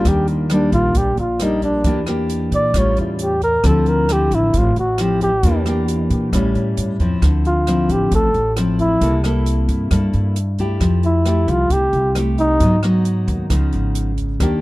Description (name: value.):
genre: bossa nova.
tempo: 134 BPM.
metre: 4/4.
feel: straight.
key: D minor.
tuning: A4 = 441 Hz.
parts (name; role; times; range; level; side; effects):
breathy flugelhorn; melody; 0.0-12.8 s; Bb3 to D5; -20 LUFS; equal; tape echo.
nylon-string guitar; accompaniment; 0.0-14.6 s; G2 to A4; -20 LUFS; left 1 dB; none.
upright bass; bass; 0.0-14.6 s; G#1 to Bb2; -19 LUFS; equal; none.
open jazz drum kit; drums; 0.1-14.5 s; hi-hat, kick drum, rim click; -24 LUFS; equal; none.
room: little or no reverb.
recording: dry, close 1970s-style studio recording.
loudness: -15 LUFS.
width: side -19 dB against mid.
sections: 0.0-7.2 A section; 7.2-14.6 B section.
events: flugelhorn solo 0.0-7.2.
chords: 0.1 Ebmaj7; 1.9 Em7b5; 2.7 A7b13; 3.6 Dm9; 5.4 Em7b5; 6.3 A7; 7.2 Dm9; 9.0 C6; 10.8 Fmaj9; 12.6 G#m7; 13.5 C#9.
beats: | 0.06 0.51 0.95 1.40 | 1.85 2.30 2.75 3.20 | 3.65 4.09 4.54 4.99 | 5.44 5.89 6.33 6.78 | 7.23 7.68 8.13 8.57 | 9.02 9.47 9.92 10.37 | 10.81 11.26 11.71 12.16 | 12.61 13.05 13.50 13.95 | 14.40.